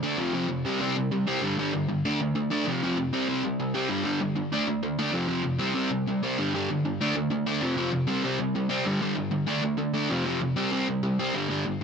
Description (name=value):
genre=punk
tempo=194 BPM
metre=4/4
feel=straight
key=unclear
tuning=A4 = 441 Hz
part: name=overdriven semi-hollow guitar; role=solo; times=0.0-11.8 s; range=F2 to D4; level=-25 LUFS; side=equal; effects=none
room=light reverb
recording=none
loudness=-25 LUFS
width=side -6 dB against mid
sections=0.0-11.8 A section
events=none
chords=0.2 F5; 0.6 C5; 1.4 G5; 2.0 D5; 2.7 F5; 3.1 C5; 3.9 G5; 4.5 D5; 5.1 F5; 5.6 C5; 6.4 G5; 7.0 D5; 7.6 F5; 8.1 C5; 8.9 G5; 9.5 D5; 10.1 F5; 10.6 C5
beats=0.18 0.49 | 0.80 1.11 1.42 1.73 | 2.04 2.35 2.65 2.96 | 3.27 3.58 3.89 4.20 | 4.51 4.82 5.13 5.44 | 5.75 6.06 6.37 6.68 | 6.99 7.30 7.61 7.92 | 8.23 8.54 8.85 9.16 | 9.47 9.78 10.09 10.40 | 10.71 11.03 11.34 11.65